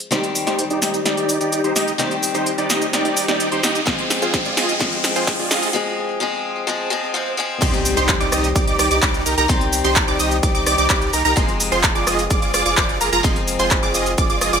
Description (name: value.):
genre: EDM, festival progressive house.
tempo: 128 BPM.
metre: 4/4.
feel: straight.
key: C minor.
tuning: A4 = 440 Hz.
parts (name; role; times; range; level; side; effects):
picked steel-string acoustic guitar; accompaniment; 0.0-14.6 s; Eb3 to Ab4; -24 LUFS; left 4 dB; sidechain pumping, ping-pong delay.
big-room dance drum kit; drums; 0.0-14.6 s; crash cymbal, handclaps, hi-hat, rim click, shaker, snare drum; -21 LUFS; equal; none.
dense compressed supersaw; riff; 0.1-14.6 s; Eb4 to Eb5; -22 LUFS; right 2 dB; sidechain pumping, low-pass filter, ping-pong delay.
saturated sub bass; bass; 0.1-14.6 s; F1 to C2; -28 LUFS; equal; sidechain pumping, high-pass filter.
riser, swell and impact; sound effects; 2.2-9.5 s; none; -28 LUFS; equal; none.
electronic kick drum; drums; 3.9-14.3 s; none; -21 LUFS; equal; none.
wide unison pluck; arpeggios; 7.6-14.6 s; Bb5 to Eb6; -21 LUFS; right 2 dB; phaser, sidechain pumping, ping-pong delay.
room: moderate lush hall reverb, RT60 1.8 s, digital ambience.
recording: high-pass filter.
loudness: -16 LUFS.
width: side -7 dB against mid.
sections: 0.1-7.6 A section; 7.6-14.6 B section.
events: build-up 0.1-7.6; drum fill 0.1-5.7; filter sweep on supersaw synth 0.1-7.6; riser 2.2-5.7; break 5.7-7.6; swell 6.9-7.6; drop 7.6-14.6; impact 7.6-9.5.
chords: 0.1 Cm; 3.9 Fm; 7.6 Cm; 11.4 Fm.